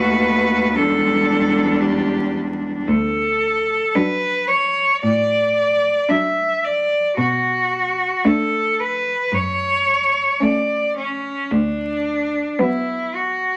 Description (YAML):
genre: classical, lyrical piece for cello ensemble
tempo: 56 BPM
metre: 4/4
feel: rubato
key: unclear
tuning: A4 = 441 Hz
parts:
  - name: clear cello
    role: melody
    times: 0.0-13.6 s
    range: C#4 to E5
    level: -21 LUFS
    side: equal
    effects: none
  - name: rich cello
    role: second line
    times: 0.0-13.4 s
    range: B3 to F#4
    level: -24 LUFS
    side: equal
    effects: none
  - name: rich cello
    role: accompaniment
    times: 0.0-13.4 s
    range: F#3 to A3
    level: -26 LUFS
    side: equal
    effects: none
  - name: rich cello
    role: bass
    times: 0.0-12.4 s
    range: D2 to B2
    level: -26 LUFS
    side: equal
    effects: none
room: moderate stone room reverb, RT60 0.9 s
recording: vinyl crackle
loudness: -19 LUFS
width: mono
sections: 0.0-13.6 A section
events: none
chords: 0.0 B7/D#; 0.8 Em7; 2.9 D; 7.2 Bm7; 9.3 F#m; 11.5 Bm/D